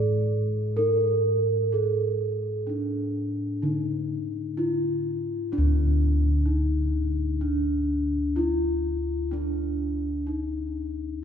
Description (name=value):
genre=Javanese gamelan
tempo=63 BPM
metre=4/4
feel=straight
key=D pelog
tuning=A4 = 435 Hz
part: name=gamelan-type bronze metallophone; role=melody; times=0.0-11.2 s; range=D4 to Bb4-20c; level=-26 LUFS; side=right 1 dB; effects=none
part: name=gamelan-type bossed gongs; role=bass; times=0.0-11.2 s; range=D2 to A4-30c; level=-27 LUFS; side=left 1 dB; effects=none
room=wet church reverb, RT60 2.7 s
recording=recorded in a church or concert hall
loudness=-24 LUFS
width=side -8 dB against mid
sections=0.0-5.5 A section; 5.5-11.2 A section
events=none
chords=none